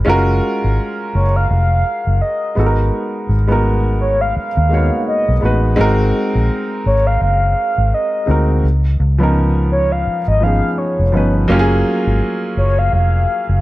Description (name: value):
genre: R&B, neo-soul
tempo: 84 BPM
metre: 4/4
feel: swing 58% on 16ths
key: G# dorian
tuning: A4 = 439 Hz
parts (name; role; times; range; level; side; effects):
- warm upright piano; accompaniment; 0.0-13.6 s; E#3 to C#5; -18 LUFS; right 1 dB; none
- vintage muted fingered electric bass; bass; 0.0-13.6 s; E#1 to D#2; -15 LUFS; equal; none
- mellow horn-like synth lead; melody; 1.2-13.6 s; C#5 to E#5; -19 LUFS; equal; chorus, plate reverb
room: light reverb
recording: none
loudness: -13 LUFS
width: side -17 dB against mid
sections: 0.1-13.6 A section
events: none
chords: 0.1 F#maj9; 2.6 G#m9; 5.8 G#9; 8.6 C#13; 11.5 F#maj9